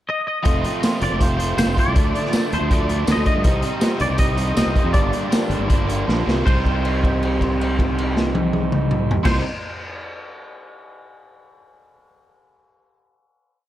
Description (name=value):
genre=indie rock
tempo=160 BPM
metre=4/4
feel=straight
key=C dorian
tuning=A4 = 438 Hz
part: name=twangy electric guitar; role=melody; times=0.1-9.4 s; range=C5 to Eb5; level=-26 LUFS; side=left 1 dB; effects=ensemble chorus, slapback echo
part: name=overdriven electric guitar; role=riff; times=0.4-9.4 s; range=F2 to F4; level=-24 LUFS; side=right 2 dB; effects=none
part: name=fuzz fingered electric bass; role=bass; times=0.5-9.4 s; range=F1 to G2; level=-23 LUFS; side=equal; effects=overdrive
part: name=raw garage drum kit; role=drums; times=0.5-9.3 s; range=crash cymbal, hi-hat, kick drum, snare drum, tambourine, toms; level=-21 LUFS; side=equal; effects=none
part: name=bright tonewheel organ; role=sustained chords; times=3.5-9.4 s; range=D4 to G5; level=-34 LUFS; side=equal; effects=none
room=light reverb, studio reverb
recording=dark, warm production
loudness=-17 LUFS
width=side -13 dB against mid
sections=0.0-0.5 pickup bar; 0.5-6.5 pre-chorus; 6.5-9.5 final chord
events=drum fill 6.1-6.5; held note 6.5-9.2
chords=0.5 F; 2.0 Dm; 3.5 Cm; 5.0 Gm; 6.5 Cm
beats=0.09 | 0.46 0.83 1.21 1.58 | 1.95 2.33 2.70 3.08 | 3.45 3.83 4.20 4.58 | 4.95 5.33 5.70 6.08 | 6.46 6.83 7.21 7.59 | 7.97 8.34 8.72 9.10